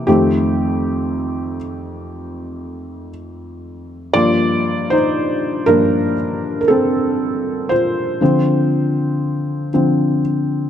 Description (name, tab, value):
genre	R&B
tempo	59 BPM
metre	4/4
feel	straight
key	G minor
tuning	A4 = 437 Hz
part	felt-muted upright piano	solo	0.0-10.7 s	F2 to D5	-16 LUFS	equal	none
room	light reverb, small room ambience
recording	dark, warm production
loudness	-15 LUFS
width	side -9 dB against mid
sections	0.0-10.7 A section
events	felt piano solo 0.0-10.7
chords	0.1 F9; 4.1 Gm11; 8.2 Dm7